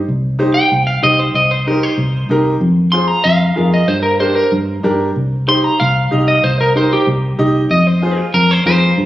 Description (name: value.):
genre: latin.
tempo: 189 BPM.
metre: 4/4.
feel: straight.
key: C minor.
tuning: A4 = 441 Hz.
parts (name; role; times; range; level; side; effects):
fingered electric bass; bass; 0.1-9.1 s; C2 to G2; -16 LUFS; equal; none.
clear upright piano; accompaniment; 0.4-8.9 s; D4 to Eb5; -18 LUFS; equal; none.
electric guitar at the edge of break-up; melody; 0.5-9.1 s; F4 to C6; -15 LUFS; equal; spring reverb, slapback echo.
room: light reverb.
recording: recorded on a phone in the room, studio reverb.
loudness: -11 LUFS.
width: side -14 dB against mid.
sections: 0.1-9.1 A section.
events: clean electric guitar solo 0.1-9.1.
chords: 0.1 Cm; 2.6 Fm; 3.9 Gm; 5.2 Cm; 7.7 Fm.